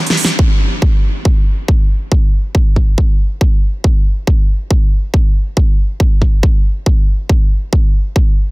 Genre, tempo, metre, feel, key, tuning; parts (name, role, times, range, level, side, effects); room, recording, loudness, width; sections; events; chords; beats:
trance; 139 BPM; 4/4; straight
big-room dance drum kit; drums; 0.1-0.5 s; crash cymbal, hi-hat, snare drum; -16 LUFS; right 1 dB; sidechain pumping on hats, low-pass filter on hats, low-pass filter on snare, sidechain pumping on cymbals, low-pass filter on cymbals
electronic kick drum; drums; 0.4-8.2 s; -11 LUFS; equal
little or no reverb; dense, heavily limited modern master; -11 LUFS; side -23 dB against mid
0.4-8.5 A section
break 0.0-0.4; drum fill 0.0-0.4; band accent 0.2
| 0.39 0.82 1.25 1.68 | 2.12 2.55 2.98 3.41 | 3.84 4.27 4.71 5.14 | 5.57 6.00 6.43 6.86 | 7.30 7.73 8.16